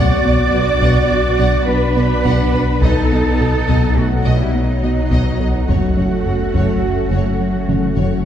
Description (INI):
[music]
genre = cinematic, hybrid orchestral and electronic film score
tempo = 105 BPM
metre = 5/4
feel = straight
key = unclear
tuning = A4 = 442 Hz
[part]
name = warm symphonic violin section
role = melody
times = 0.0-8.2 s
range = C#5 to F#5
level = -30 LUFS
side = left 1 dB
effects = none
[part]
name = warm symphonic violin section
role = second line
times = 0.0-8.2 s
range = D#5 to D6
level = -28 LUFS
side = left 2 dB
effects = none
[part]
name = clear symphonic viola section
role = accompaniment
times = 0.0-8.2 s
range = F#3 to F#4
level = -25 LUFS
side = right 2 dB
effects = none
[part]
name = analog string pad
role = sustained chords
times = 0.0-8.2 s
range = A3 to F#5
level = -26 LUFS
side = equal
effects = ensemble chorus
[part]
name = mellow French horn section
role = sustained chords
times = 0.0-8.2 s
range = F#3 to F#4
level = -27 LUFS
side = left 3 dB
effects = none
[part]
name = harp-like synth pluck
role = arpeggios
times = 0.0-8.1 s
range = F#3 to B4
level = -24 LUFS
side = left 4 dB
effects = chorus, ping-pong delay
[part]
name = rubbery square bass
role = riff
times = 0.0-8.1 s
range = F#2 to B3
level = -21 LUFS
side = right 1 dB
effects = none
[part]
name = punchy sub bass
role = bass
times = 0.0-8.2 s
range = F#1 to B1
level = -21 LUFS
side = equal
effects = none
[part]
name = rich symphonic cello section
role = bass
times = 0.0-8.2 s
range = D#4 to D5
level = -21 LUFS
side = right 3 dB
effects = none
[part]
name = rich symphonic double bass section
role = bass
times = 0.0-8.1 s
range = F#1 to B1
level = -22 LUFS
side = right 1 dB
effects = none
[part]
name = taiko ensemble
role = drums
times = 0.8-8.2 s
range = none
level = -22 LUFS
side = equal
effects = none
[sound]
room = wet concert hall reverb, RT60 2.5 s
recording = heard from further back in the room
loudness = -13 LUFS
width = side -10 dB against mid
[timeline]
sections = 0.0-8.2 A section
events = drum fill 7.7-8.2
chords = 0.0 Bm; 2.8 B7; 5.7 F#m